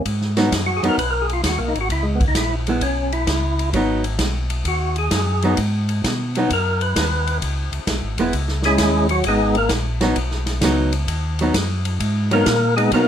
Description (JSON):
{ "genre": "soul jazz organ trio", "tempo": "131 BPM", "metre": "4/4", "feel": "swing 67% on 8ths", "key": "G# minor", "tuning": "A4 = 440 Hz", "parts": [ { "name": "percussive tonewheel organ", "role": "melody", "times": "0.0-13.1 s", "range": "F#3 to B4", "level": "-20 LUFS", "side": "equal", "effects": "slow rotary speaker, overdrive" }, { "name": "mellow tonewheel organ", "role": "bass", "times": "0.1-13.1 s", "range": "E1 to B2", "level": "-22 LUFS", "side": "equal", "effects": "slow rotary speaker" }, { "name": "swinging big-band drum kit", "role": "drums", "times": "0.1-13.1 s", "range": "hi-hat, kick drum, ride cymbal, snare drum", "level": "-24 LUFS", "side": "equal", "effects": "none" }, { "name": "archtop guitar, miked and amplified", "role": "accompaniment", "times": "0.4-13.1 s", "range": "F#3 to E4", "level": "-19 LUFS", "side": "right 1 dB", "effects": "none" } ], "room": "moderate studio reverb, RT60 0.5 s", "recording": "none", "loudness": "-17 LUFS", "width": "side -9 dB against mid", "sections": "0.1-13.1 A section", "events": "tonewheel organ solo 0.1-13.1", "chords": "0.1 G#m7; 1.9 C#m7; 3.7 G#m7; 7.4 C#m7; 9.2 G#m7" }